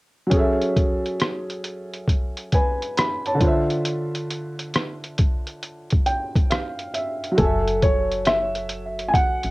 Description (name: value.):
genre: lo-fi hip hop.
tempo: 68 BPM.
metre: 4/4.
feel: swing 66% on 16ths.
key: F# minor.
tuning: A4 = 440 Hz.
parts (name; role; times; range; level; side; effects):
felt-muted upright piano; accompaniment; 0.3-9.5 s; D3 to B5; -25 LUFS; equal; cassette tape, low-pass filter.
lo-fi sampler-style drum kit; drums; 0.3-9.5 s; hi-hat, kick drum, rim click; -22 LUFS; equal; overdrive, cassette tape.
dark upright piano; melody; 7.4-9.5 s; A4 to G#5; -22 LUFS; equal; low-pass filter, cassette tape, plate reverb, tape echo.
woody FM bass; bass; 7.4-9.5 s; F#1 to A1; -27 LUFS; equal; none.
room: light reverb.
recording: home recording on cassette.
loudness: -20 LUFS.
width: side -21 dB against mid.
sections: 0.3-7.4 A section; 7.4-9.5 B section.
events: felt piano fill 5.6-7.4.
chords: 0.3 F#m9; 3.4 Dm9; 7.4 F#m9.